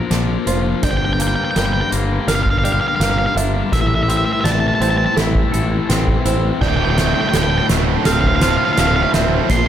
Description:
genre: post-rock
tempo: 83 BPM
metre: 4/4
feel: straight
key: D minor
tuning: A4 = 439 Hz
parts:
  - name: granular cloud pad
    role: sustained chords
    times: 0.0-9.7 s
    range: F3 to C5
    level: -30 LUFS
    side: right 1 dB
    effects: none
  - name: felt-muted upright piano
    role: arpeggios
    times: 0.0-9.7 s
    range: A4 to F5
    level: -27 LUFS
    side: right 7 dB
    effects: analog delay
  - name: twangy electric guitar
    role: arpeggios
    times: 0.0-9.7 s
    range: D2 to Bb4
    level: -24 LUFS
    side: left 1 dB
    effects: analog delay
  - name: distorted electric guitar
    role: riff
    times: 0.0-9.7 s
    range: D2 to F3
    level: -23 LUFS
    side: left 8 dB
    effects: distortion
  - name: growling fingered electric bass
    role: bass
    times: 0.1-9.7 s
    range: D1 to Bb1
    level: -20 LUFS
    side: equal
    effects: overdrive
  - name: soft-mallet drum kit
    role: drums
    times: 0.1-9.7 s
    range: crash cymbal, hi-hat, kick drum, snare drum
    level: -20 LUFS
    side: right 1 dB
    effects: none
  - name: octave-fuzz lead guitar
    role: melody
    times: 0.8-9.7 s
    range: E5 to C6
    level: -20 LUFS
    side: right 1 dB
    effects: distortion, analog delay
  - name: tight distorted guitar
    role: riff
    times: 6.6-9.7 s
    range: D2 to F3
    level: -22 LUFS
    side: right 13 dB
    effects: distortion
room: light reverb, small room ambience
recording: none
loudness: -14 LUFS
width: side -10 dB against mid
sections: 0.0-9.7 A section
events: build-up 0.0-9.7; drum fill 0.0-9.7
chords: 0.0 Bbadd9; 0.8 Gm7; 3.7 Am7; 6.6 Dm7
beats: 0.12 | 0.84 1.56 2.29 3.01 | 3.73 4.46 5.18 5.90 | 6.62 7.34 8.06 8.78 | 9.50

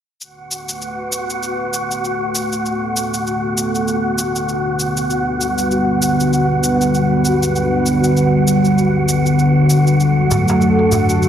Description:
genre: organic downtempo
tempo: 98 BPM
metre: 4/4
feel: swing 57% on 16ths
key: B minor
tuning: A4 = 441 Hz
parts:
  - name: warm analog pad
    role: sustained chords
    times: 0.2-11.3 s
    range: F#2 to B4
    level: -16 LUFS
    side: equal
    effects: chorus
  - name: shaker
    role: drums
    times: 0.2-11.3 s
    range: none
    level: -24 LUFS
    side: left 1 dB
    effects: overdrive
  - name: wind-like tuned noise texture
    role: texture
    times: 0.4-11.3 s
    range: F#4 to F#5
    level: -20 LUFS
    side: equal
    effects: built-in reverb
  - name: darbuka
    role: percussion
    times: 10.3-11.1 s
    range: none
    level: -21 LUFS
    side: right 2 dB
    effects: none
room: moderate lush hall reverb, RT60 2.0 s, digital ambience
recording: dark, warm production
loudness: -14 LUFS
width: side -9 dB against mid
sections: 0.2-11.3 A section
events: none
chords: 0.2 Bm7; 5.1 Gmaj7; 10.0 D/F#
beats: | 0.21 0.82 1.43 2.04 | 2.66 3.27 3.88 4.49 | 5.11 5.72 6.33 6.94 | 7.56 8.17 8.78 9.39 | 10.00 10.62 11.23

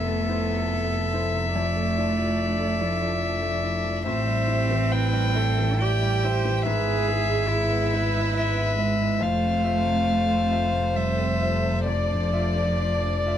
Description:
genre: neoclassical piano and strings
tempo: 70 BPM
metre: 3/4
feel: uneven beats, rubato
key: A minor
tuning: A4 = 440 Hz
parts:
  - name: warm violin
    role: melody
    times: 0.0-13.4 s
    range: D5 to G5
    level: -27 LUFS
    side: left 4 dB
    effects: none
  - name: warm cello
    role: second line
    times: 0.0-13.4 s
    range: F3 to G#4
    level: -29 LUFS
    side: right 5 dB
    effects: none
  - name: bright baby grand piano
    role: accompaniment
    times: 0.0-13.4 s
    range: F2 to E5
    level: -32 LUFS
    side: left 2 dB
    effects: none
  - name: warm viola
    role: accompaniment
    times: 0.0-13.4 s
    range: G#4 to D5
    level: -33 LUFS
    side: right 3 dB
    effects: none
  - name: warm studio string section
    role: sustained chords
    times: 0.0-13.4 s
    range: A3 to E5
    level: -37 LUFS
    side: left 2 dB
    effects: none
  - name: dark double bass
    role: bass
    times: 0.0-13.4 s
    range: F1 to A1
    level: -26 LUFS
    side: equal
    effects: none
room: little or no reverb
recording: close, detailed microphones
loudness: -21 LUFS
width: side -10 dB against mid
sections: 0.0-13.4 A section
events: none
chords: 0.0 Fmaj7; 1.6 Dmadd9/F; 4.1 Am7; 6.7 E/G#; 9.2 Fmaj7; 11.9 Dmadd9/F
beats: 0.73 | 1.56 2.39 3.22 | 4.07 4.92 5.82 | 6.67 7.52 8.38 | 9.23 10.08 10.96 | 11.88 12.80

